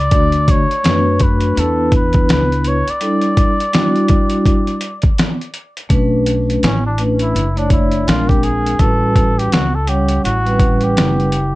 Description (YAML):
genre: hip hop, jazz-hop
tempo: 83 BPM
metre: 4/4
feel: swing 61% on 16ths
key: unclear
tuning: A4 = 440 Hz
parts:
  - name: trumpet with cup mute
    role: melody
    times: 0.0-11.6 s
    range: C#4 to D5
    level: -20 LUFS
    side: equal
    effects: analog delay
  - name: upright bass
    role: bass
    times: 0.0-11.6 s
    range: F#1 to F#2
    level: -18 LUFS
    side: equal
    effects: none
  - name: vibraphone with soft mallets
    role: accompaniment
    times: 0.1-11.3 s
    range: G3 to F#5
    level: -18 LUFS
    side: equal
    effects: none
  - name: dusty soul sampler-style drum kit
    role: drums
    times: 0.1-11.5 s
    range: hi-hat, kick drum, snare drum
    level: -16 LUFS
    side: equal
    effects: overdrive, vintage 12-bit sampler grit
room: light reverb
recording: cassette tape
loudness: -12 LUFS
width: side -18 dB against mid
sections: 0.0-5.9 A section; 5.9-11.6 B section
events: muted trumpet solo 5.9-11.6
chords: 0.1 Dmaj7; 1.6 E5; 3.0 A7sus4; 5.9 Bm9; 8.1 A#9; 8.8 A13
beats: | 0.12 0.84 1.56 2.29 | 3.01 3.73 4.46 5.18 | 5.90 6.62 7.35 8.07 | 8.79 9.52 10.24 10.96